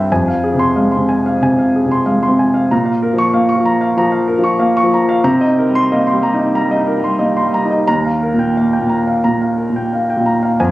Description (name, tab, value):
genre	neoclassical minimalist piano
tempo	87-96 BPM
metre	4/4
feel	rubato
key	F minor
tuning	A4 = 440 Hz
part	clear grand piano	solo	0.0-10.7 s	C2 to Db6	-12 LUFS	equal	none
room	light reverb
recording	recorded on a phone in the room, club reverb, compression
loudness	-12 LUFS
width	side -16 dB against mid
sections	0.1-10.7 A section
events	none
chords	0.1 Fm; 2.7 Bbm; 5.2 Cm7; 7.9 Ebadd9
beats	| 0.10 0.76 1.42 2.07 | 2.71 3.35 3.98 4.61 | 5.24 5.88 6.54 7.19 | 7.86 8.54 9.22 9.91 | 10.59